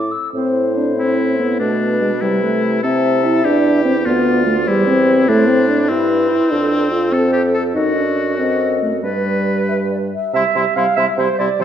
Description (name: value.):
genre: quick classical-period movement for wind quintet.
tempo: 96 BPM (dotted quarters).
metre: 6/8.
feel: straight.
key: A minor, C major from 5.3 s.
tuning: A4 = 440 Hz.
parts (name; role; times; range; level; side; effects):
mellow concert flute; melody; 0.0-11.6 s; A4 to E6; -23 LUFS; left 6 dB; none.
dark French horn; accompaniment; 0.0-11.6 s; F3 to F4; -17 LUFS; left 1 dB; none.
mellow bassoon; bass; 0.0-11.6 s; D2 to C3; -21 LUFS; right 2 dB; none.
mellow clarinet; accompaniment; 0.3-11.6 s; D4 to F5; -22 LUFS; right 6 dB; none.
bright oboe; second line; 1.0-11.6 s; C4 to B4; -23 LUFS; left 4 dB; none.
room: wet scoring stage reverb, RT60 1.6 s.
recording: none.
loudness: -14 LUFS.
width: side -9 dB against mid.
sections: 0.3-10.3 A section; 10.3-11.6 B section.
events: none.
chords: 0.3 Am; 1.6 Bm7; 2.2 Am/C; 2.8 C; 4.1 Bdim/D; 4.7 C/E; 5.3 Am; 6.5 Dm7/F; 7.8 F#dim7; 9.0 G; 10.3 C.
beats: | 0.34 0.97 | 1.60 2.22 | 2.83 3.45 | 4.06 4.67 | 5.29 5.90 | 6.51 7.13 | 7.75 8.38 | 9.03 9.69 | 10.35 10.98 | 11.61.